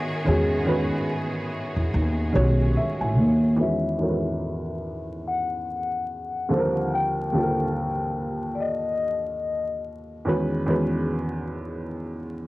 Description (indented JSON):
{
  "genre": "lo-fi hip hop",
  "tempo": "72 BPM",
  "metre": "4/4",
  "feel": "swing 58% on 16ths",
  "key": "E major",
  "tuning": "A4 = 439 Hz",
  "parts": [
    { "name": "vibraphone with soft mallets", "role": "melody", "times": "0.0-9.8 s", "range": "D5 to G5", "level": "-29 LUFS", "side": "left 4 dB", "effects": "low-pass filter, tape echo" },
    { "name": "dark upright piano", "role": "accompaniment", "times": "0.0-12.5 s", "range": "D#2 to G#5", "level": "-26 LUFS", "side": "right 1 dB", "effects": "cassette tape, low-pass filter" },
    { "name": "clear studio string section", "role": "sustained chords", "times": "0.0-3.6 s", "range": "D#3 to G#4", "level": "-32 LUFS", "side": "equal", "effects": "cassette tape" },
    { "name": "upright bass", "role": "bass", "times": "0.3-3.6 s", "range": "A1 to E2", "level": "-21 LUFS", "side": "equal", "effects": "tube saturation" }
  ],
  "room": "wet booth ambience, RT60 0.3 s",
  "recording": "home recording on cassette, vinyl crackle",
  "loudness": "-22 LUFS",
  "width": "side -18 dB against mid",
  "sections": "0.0-3.6 A section; 3.6-12.5 B section",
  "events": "upright piano fill 2.3-3.6; filter sweep 3.6-12.5",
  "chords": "0.0 Emaj9; 6.5 D#maj9; 10.3 Emaj9"
}